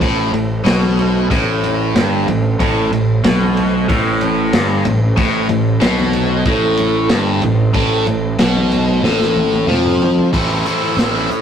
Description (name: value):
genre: psychedelic rock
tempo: 93 BPM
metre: 4/4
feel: straight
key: A minor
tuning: A4 = 442 Hz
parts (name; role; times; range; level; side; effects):
- tonewheel organ; sustained chords; 0.0-11.4 s; A3 to A5; -26 LUFS; right 3 dB; none
- cranked stack guitar; riff; 0.0-11.4 s; G2 to E4; -15 LUFS; equal; overdrive, phaser
- fuzz picked electric bass; bass; 0.0-11.3 s; G1 to F2; -19 LUFS; equal; overdrive
- crunchy breakbeat drum kit; drums; 0.0-11.4 s; crash cymbal, hi-hat, kick drum, ride cymbal, snare drum, toms; -20 LUFS; equal; none
- congas; percussion; 0.8-11.4 s; none; -29 LUFS; equal; none
room: moderate stone room reverb, RT60 1.3 s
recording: rough rehearsal-room recording, tube saturation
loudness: -13 LUFS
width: side -8 dB against mid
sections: 0.0-10.3 A section; 10.3-11.4 B section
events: drum fill 9.0-10.3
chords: 0.0 Am